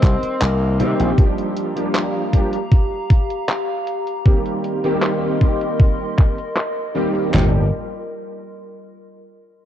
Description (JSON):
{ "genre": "vaporwave", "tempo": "78 BPM", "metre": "4/4", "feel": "straight", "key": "G minor", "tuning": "A4 = 440 Hz", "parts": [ { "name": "breathy tenor saxophone", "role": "melody", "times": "0.0-1.2 s", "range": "Bb3 to C4", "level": "-27 LUFS", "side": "left 2 dB", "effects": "tape echo" }, { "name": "warm electric grand piano", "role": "accompaniment", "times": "0.0-7.6 s", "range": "Eb3 to G4", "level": "-22 LUFS", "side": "right 1 dB", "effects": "ensemble chorus, vintage 12-bit sampler grit, tape echo" }, { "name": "warbly tape-like pad", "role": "sustained chords", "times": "0.0-7.7 s", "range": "G4 to C6", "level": "-27 LUFS", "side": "left 1 dB", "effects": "chorus, built-in reverb" }, { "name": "gritty slap bass", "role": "bass", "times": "0.0-1.1, 7.3-7.7 s", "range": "G1 to C3", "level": "-18 LUFS", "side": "equal", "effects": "overdrive" }, { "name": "detuned 8-bit digital drum machine", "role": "drums", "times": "0.0-7.5 s", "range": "handclaps, kick drum, snare drum, toms", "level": "-14 LUFS", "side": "equal", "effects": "overdrive, vintage 12-bit sampler grit" }, { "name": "detuned 8-bit digital drum machine", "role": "drums", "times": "0.0-7.3 s", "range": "handclaps, hi-hat", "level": "-25 LUFS", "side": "equal", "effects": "overdrive, low-pass filter on hats, vintage 12-bit sampler grit, low-pass filter on cymbals, low-pass filter on snare" } ], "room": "light reverb", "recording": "dark, warm production, cassette tape", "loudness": "-16 LUFS", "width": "side -11 dB against mid", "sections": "0.0-7.3 A section; 7.3-9.7 B section", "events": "filter sweep on drum 0.0-7.3", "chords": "0.0 Cm7; 1.2 Gm7; 4.3 Cm7; 7.3 Gm7", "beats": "0.41 | 1.18 1.95 2.72 3.49 | 4.26 5.03 5.80 6.57 | 7.33" }